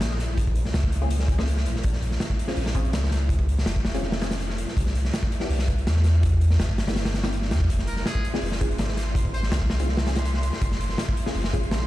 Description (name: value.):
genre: drum and bass, jungle.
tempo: 164 BPM.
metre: 4/4.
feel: straight.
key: F minor.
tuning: A4 = 440 Hz.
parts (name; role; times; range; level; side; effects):
filtered dub chord stab; stabs; 0.0-11.9 s; Bb3 to Ab4; -34 LUFS; left 2 dB; phaser, wide subtle chorus, dub echo.
soft dub sub bass; bass; 0.0-11.9 s; F1 to E2; -24 LUFS; equal; tube saturation.
raw garage drum kit; drums; 0.0-11.9 s; hi-hat, kick drum, snare drum; -25 LUFS; equal; none.
twinkling granular texture; texture; 8.1-11.9 s; C6; -38 LUFS; right 1 dB; built-in reverb.
trumpet with metal mute; melody; 7.9-9.5 s; Ab4 to C5; -37 LUFS; equal; dub echo.
room: small room reverb.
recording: played on a big sound system in a bare room, stone room reverb.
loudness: -22 LUFS.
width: side -16 dB against mid.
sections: 0.0-11.9 A section.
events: none.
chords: 0.0 Gbmaj7 (rootless); 1.8 Bbm9; 4.8 Cmaj7; 7.7 Fm7; 10.6 Gbmaj7.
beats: 0.01 | 0.38 0.74 1.11 1.47 | 1.84 2.20 2.57 2.94 | 3.30 3.67 4.03 4.40 | 4.76 5.13 5.50 5.86 | 6.23 6.59 6.96 7.33 | 7.69 8.06 8.42 8.79 | 9.15 9.52 9.89 10.25 | 10.62 10.98 11.35 11.72.